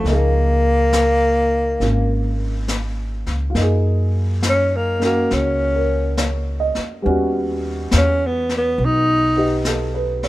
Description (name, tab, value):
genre	jazz ballad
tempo	69 BPM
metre	4/4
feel	swing 68% on 8ths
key	F# major from 3.5 s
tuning	A4 = 441 Hz
part	warm tenor saxophone	melody	0.0-9.7 s	A#3 to D#4	-18 LUFS	equal	none
part	dark grand piano	accompaniment	0.0-10.3 s	F3 to D#5	-24 LUFS	right 1 dB	none
part	upright bass	bass	0.0-10.3 s	Ab1 to F#2	-20 LUFS	equal	none
part	vintage brush drum kit	drums	0.1-10.3 s	brushed snare drum, hi-hat, snare drum	-25 LUFS	left 3 dB	none
room	little or no reverb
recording	minimal, uncompressed stereo recording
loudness	-16 LUFS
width	side -17 dB against mid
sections	0.0-3.5 A section; 3.5-10.3 B section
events	tenor saxophone solo 3.5-10.3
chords	0.0 Db69; 3.5 F#maj13; 7.0 D#7alt